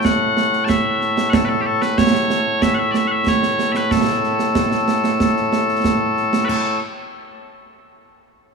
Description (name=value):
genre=scottish traditional, Scottish pipe music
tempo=93 BPM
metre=4/4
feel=straight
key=A major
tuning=A4 = 440 Hz
part: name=loud bright bagpipes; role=melody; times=0.0-6.8 s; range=A2 to A5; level=-18 LUFS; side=left 2 dB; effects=none
part: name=concert snare drum, concert bass drum and clash cymbals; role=drums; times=0.0-6.6 s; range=none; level=-20 LUFS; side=right 5 dB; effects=none
room=light reverb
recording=small room ambience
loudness=-15 LUFS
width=side -4 dB against mid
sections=0.0-6.5 A section; 6.5-8.5 B section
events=none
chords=none